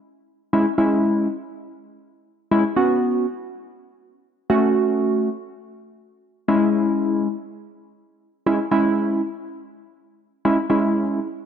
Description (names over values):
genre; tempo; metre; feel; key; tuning
pop; 121 BPM; 4/4; straight; C# minor; A4 = 440 Hz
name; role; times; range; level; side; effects
warm analog keys; solo; 0.5-11.2 s; G#3 to F#4; -18 LUFS; equal; chorus, slapback echo
room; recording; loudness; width
light reverb; none; -18 LUFS; side -8 dB against mid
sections
0.0-10.7 A section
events
none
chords
0.0 C#m; 2.8 Bsus2; 4.5 F#m; 6.5 C#m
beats
0.28 | 0.78 1.28 1.77 2.27 | 2.76 3.26 3.76 4.25 | 4.75 5.24 5.74 6.24 | 6.73 7.23 7.72 8.22 | 8.71 9.21 9.71 10.20 | 10.70 11.19